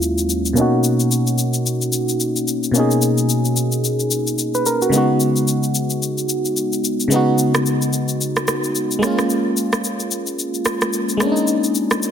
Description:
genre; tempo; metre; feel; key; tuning
amapiano; 110 BPM; 4/4; swing 58% on 16ths; unclear; A4 = 440 Hz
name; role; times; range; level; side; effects
FM electric piano; accompaniment; 0.0-12.1 s; Eb2 to B4; -17 LUFS; equal; chorus, low-pass filter
electronic shaker and rim click; drums; 0.0-12.1 s; none; -22 LUFS; left 2 dB; soft clipping on snare
room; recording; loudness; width
moderate lush hall reverb, RT60 1.7 s, digital ambience; dense, heavily limited modern master; -16 LUFS; side -8 dB against mid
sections
0.0-12.1 A section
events
filter sweep on FM electric piano 0.0-12.1; kick muted 2.8-4.9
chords
0.0 Ebm11; 0.6 Bmaj7; 4.9 Db9sus4; 9.0 Bbm7

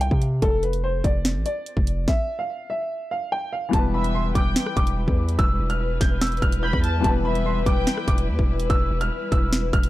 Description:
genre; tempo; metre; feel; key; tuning
hip hop, drill; 145 BPM; 4/4; half-time; E phrygian; A4 = 440 Hz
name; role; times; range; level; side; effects
dark baby grand piano; melody; 0.0-9.9 s; A4 to G6; -28 LUFS; equal; ping-pong delay
long sustained 808-style bass; bass; 0.0-9.9 s; E1 to C3; -24 LUFS; equal; none
drill drum kit; drums; 0.0-9.9 s; hi-hat, kick drum, rim click, snare drum; -22 LUFS; equal; none
felt-muted upright piano; accompaniment; 3.7-9.9 s; E3 to B4; -30 LUFS; left 5 dB; none
warm studio string section; sustained chords; 3.7-9.9 s; G3 to B4; -31 LUFS; left 3 dB; none
warm studio violin section; second line; 3.9-8.2 s; E5 to B5; -32 LUFS; left 1 dB; ping-pong delay
room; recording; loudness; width
small room ambience; dark, warm production; -20 LUFS; side -16 dB against mid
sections
0.0-3.7 A section; 3.7-9.9 B section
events
stop 2.1-3.7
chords
0.4 N.C.; 3.7 Em

